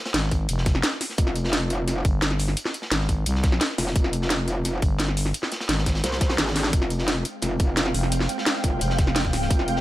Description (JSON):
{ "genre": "dark technical drum and bass", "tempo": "173 BPM", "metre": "4/4", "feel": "straight", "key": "F minor", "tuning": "A4 = 440 Hz", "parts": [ { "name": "growling FM bass", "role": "bass", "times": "0.1-9.5 s", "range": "F1 to C2", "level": "-24 LUFS", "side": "equal", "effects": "none" }, { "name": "crunchy breakbeat drum kit", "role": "drums", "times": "0.1-9.8 s", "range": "hi-hat, snare drum", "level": "-34 LUFS", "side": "equal", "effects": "high-pass filter on hats, high-pass filter on snare, high-pass filter on room" }, { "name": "drum and bass drum kit", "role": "drums", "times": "0.1-9.7 s", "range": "hi-hat, snare drum", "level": "-25 LUFS", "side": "equal", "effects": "none" }, { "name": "electronic kick drum", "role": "drums", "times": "0.3-9.6 s", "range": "none", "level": "-22 LUFS", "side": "equal", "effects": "none" }, { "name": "metallic wobble bass", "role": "bass", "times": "1.2-9.8 s", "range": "F1 to C2", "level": "-25 LUFS", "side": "equal", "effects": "distortion, chorus, overdrive, sidechain pumping" }, { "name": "ethereal airy pad", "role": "texture", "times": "7.3-9.8 s", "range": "Ab3 to G5", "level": "-29 LUFS", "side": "right 1 dB", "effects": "ensemble chorus, built-in reverb, sidechain pumping" } ], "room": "little or no reverb", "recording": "none", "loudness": "-21 LUFS", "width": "side -15 dB against mid", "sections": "0.0-6.7 A section; 6.7-9.8 A section", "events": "drop 0.0-6.7, 6.7-9.8; drum fill 6.6", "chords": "0.0 Fmadd9" }